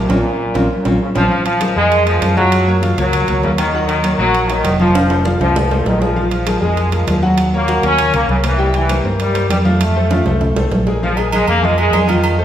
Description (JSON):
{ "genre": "latin, salsa", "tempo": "198 BPM", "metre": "4/4", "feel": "straight", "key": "Bb minor", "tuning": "A4 = 440 Hz", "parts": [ { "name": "bright trombone section", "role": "melody", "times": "0.0-12.4 s", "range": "Bb2 to Db4", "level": "-17 LUFS", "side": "equal", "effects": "none" }, { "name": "clear grand piano", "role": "accompaniment", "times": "0.0-12.4 s", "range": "F3 to G5", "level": "-20 LUFS", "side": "left 2 dB", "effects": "none" }, { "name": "fingered electric bass", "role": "bass", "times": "0.0-12.4 s", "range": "F1 to G2", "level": "-18 LUFS", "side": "equal", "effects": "none" }, { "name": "congas", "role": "percussion", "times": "0.1-12.4 s", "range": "none", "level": "-21 LUFS", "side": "right 1 dB", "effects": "none" }, { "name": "timbales and agogo bells", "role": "percussion", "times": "0.1-12.4 s", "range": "none", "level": "-23 LUFS", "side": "right 3 dB", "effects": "none" } ], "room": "wet recital hall reverb, RT60 1.7 s", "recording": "recorded in a church or concert hall", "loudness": "-12 LUFS", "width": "side -10 dB against mid", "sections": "0.0-1.3 A section; 1.3-11.0 B section; 11.0-12.4 C section", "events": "band accent 0.1-1.3; drum fill 5.0-6.2, 10.1-11.0", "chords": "0.1 Bbmadd9; 1.3 Bb5; 2.5 Gbmaj7; 3.7 Ebm7; 5.0 F; 6.2 Bb5; 7.4 Ebm7; 8.6 C7; 9.8 F; 11.0 Bb5" }